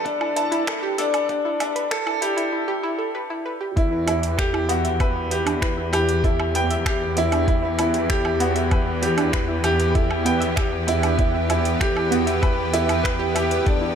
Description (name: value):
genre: piano and strings electronica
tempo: 97 BPM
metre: 4/4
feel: straight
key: E minor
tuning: A4 = 441 Hz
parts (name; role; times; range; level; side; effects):
- lush unison pad; sustained chords; 0.0-13.9 s; E2 to B4; -28 LUFS; left 1 dB; chorus, sidechain pumping
- bright grand piano; riff; 0.0-13.9 s; D4 to A5; -23 LUFS; equal; ping-pong delay
- deep house drum kit; drums; 0.1-13.8 s; finger snaps, hi-hat, woodblock; -29 LUFS; right 2 dB; high-pass filter on hats, studio reverb, high-pass filter on perc, high-pass filter on snare
- electronic kick drum; drums; 0.1-13.8 s; none; -22 LUFS; equal; studio reverb
- analog pluck; arpeggios; 0.2-13.9 s; B3 to E5; -28 LUFS; right 3 dB; chorus, sidechain pumping, ping-pong delay
- rich symphonic cello section; bass; 3.8-13.9 s; E2; -25 LUFS; equal; sidechain pumping
room: light reverb, digital ambience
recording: high-pass filter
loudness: -19 LUFS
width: side -8 dB against mid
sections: 0.0-3.8 A section; 3.8-13.9 B section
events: build-up 0.0-3.8; filter sweep 0.0-3.8; break 2.5-3.8; drop 3.8-13.9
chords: 0.0 Gadd9/E; 3.8 Emadd9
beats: 0.06 0.67 | 1.29 1.91 2.53 3.15 | 3.77 4.39 5.00 5.62 | 6.24 6.86 7.48 8.10 | 8.71 9.33 9.95 10.57 | 11.19 11.81 12.43 13.04 | 13.66